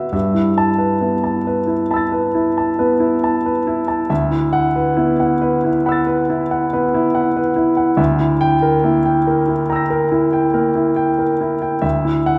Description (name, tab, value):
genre	classical, impressionist solo piano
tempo	46 BPM (dotted quarters)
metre	9/8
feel	rubato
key	unclear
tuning	A4 = 440 Hz
part	clear grand piano	solo	0.0-12.4 s	D2 to Bb6	-17 LUFS	equal	none
room	wet concert hall reverb, RT60 1.9 s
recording	none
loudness	-17 LUFS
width	mono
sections	0.0-12.4 A section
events	none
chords	0.1 G69; 4.1 D69; 8.0 Gm6/D; 11.8 Dadd9